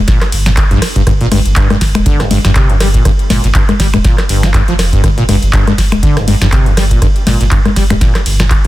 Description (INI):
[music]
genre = acid house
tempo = 121 BPM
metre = 4/4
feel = swing 56% on 16ths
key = G minor pentatonic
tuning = A4 = 440 Hz
[part]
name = warm sub bass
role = bass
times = 0.0-8.7 s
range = D1 to Bb1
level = -14 LUFS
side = equal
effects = sidechain pumping
[part]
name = acid bass, saw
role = riff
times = 0.1-8.7 s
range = F2 to G3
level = -15 LUFS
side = equal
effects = tube saturation, lush chorus, dub echo
[part]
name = booming analog drum machine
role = drums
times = 0.1-8.7 s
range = congas, finger snaps, handclaps, hi-hat, ride cymbal, rim click, snare drum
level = -15 LUFS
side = left 2 dB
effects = none
[part]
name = electronic kick drum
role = drums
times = 0.1-8.6 s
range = none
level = -12 LUFS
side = equal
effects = none
[sound]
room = little or no reverb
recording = dense, heavily limited modern master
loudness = -8 LUFS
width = side -16 dB against mid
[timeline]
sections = 0.0-8.7 A section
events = none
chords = 0.0 Gm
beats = 0.08 0.57 | 1.07 1.57 2.06 2.56 | 3.05 3.55 4.04 4.54 | 5.04 5.53 6.03 6.53 | 7.02 7.52 8.01 8.51